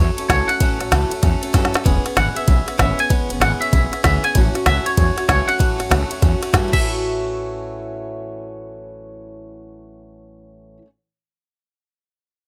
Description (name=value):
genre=rockabilly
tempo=192 BPM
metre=4/4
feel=swing 63% on 8ths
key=A major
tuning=A4 = 440 Hz
part: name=twangy electric guitar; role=melody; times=0.0-10.8 s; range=C#5 to G#5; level=-24 LUFS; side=equal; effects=harmonic tremolo, digital delay
part: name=picked swing-style acoustic guitar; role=accompaniment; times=0.0-10.9 s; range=A2 to A4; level=-27 LUFS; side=equal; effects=none
part: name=upright bass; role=bass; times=0.0-10.8 s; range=E1 to G2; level=-23 LUFS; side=equal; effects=none
part: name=organic electronic drum kit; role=drums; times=0.2-6.8 s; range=crash cymbal, kick drum, ride cymbal, snare drum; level=-21 LUFS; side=equal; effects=overdrive
room=little or no reverb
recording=none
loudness=-18 LUFS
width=mono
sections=0.0-6.8 A section; 6.8-9.3 B section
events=drum fill 1.5-1.9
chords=0.0 A6; 1.9 E6; 4.3 A6